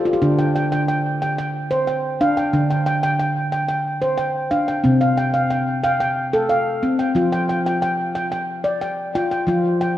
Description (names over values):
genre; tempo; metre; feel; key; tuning
world meditative; 182 BPM (eighths); 7/8; straight; unclear; A4 = 440 Hz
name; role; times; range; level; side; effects
handpan; solo; 0.0-10.0 s; C3 to G5; -18 LUFS; equal; diffuse ambient delay
room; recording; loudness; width
wet echo chamber reverb, RT60 1.5 s, small room reverb; dark, warm production; -18 LUFS; side -12 dB against mid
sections
0.2-9.5 A section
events
handpan fill 0.0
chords
0.2 Dm; 4.9 C5; 7.2 Fsus2